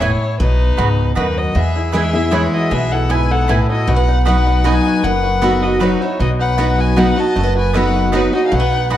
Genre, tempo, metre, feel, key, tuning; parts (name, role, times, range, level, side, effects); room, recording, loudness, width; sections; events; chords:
bluegrass; 155 BPM; 3/4; straight; A4 = 439 Hz
dark fiddle; melody; 0.0-9.0 s; B4 to A5; -21 LUFS; left 4 dB
clear fiddle; second line; 0.0-9.0 s; D#4 to D#5; -26 LUFS; left 1 dB
picked steel-string acoustic guitar; accompaniment; 0.0-9.0 s; E2 to F#4; -18 LUFS; equal
mandolin; stabs; 0.0-9.0 s; B3 to B5; -24 LUFS; right 5 dB
upright bass; bass; 0.0-9.0 s; E1 to E2; -18 LUFS; equal
bluegrass banjo; melody; 1.6-9.0 s; E3 to A4; -24 LUFS; right 3 dB
moderate large studio reverb, RT60 1.2 s; dark, warm production; -13 LUFS; side -12 dB against mid
0.0-9.0 A section
0.4 B; 1.6 E; 3.9 B